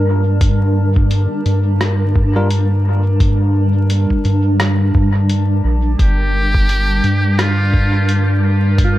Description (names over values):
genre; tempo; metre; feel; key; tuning
ambient dub; 86 BPM; 4/4; swing 58% on 16ths; G minor; A4 = 443 Hz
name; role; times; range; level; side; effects
granular cloud pad; sustained chords; 0.0-9.0 s; G3 to A5; -20 LUFS; equal; built-in reverb
soft dub sub bass; bass; 0.0-9.0 s; G1 to G2; -14 LUFS; equal; none
electronic kick drum; drums; 0.4-8.9 s; none; -15 LUFS; equal; none
lo-fi sampler-style drum kit; drums; 0.4-8.9 s; hi-hat, rim click; -24 LUFS; equal; dub echo
bell-like tine electric piano; stabs; 2.4-2.5 s; G3 to Bb4; -25 LUFS; left 1 dB; vintage 12-bit sampler grit, dub echo
trumpet with metal mute; melody; 6.0-8.4 s; F4 to G4; -20 LUFS; equal; dub echo
soft synth bell; arpeggios; 8.8-9.0 s; F4; -19 LUFS; right 3 dB; chorus, phaser, dub echo
room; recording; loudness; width
light reverb, digital ambience; vinyl crackle; -12 LUFS; side -15 dB against mid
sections
0.0-9.0 A section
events
none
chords
0.0 Gm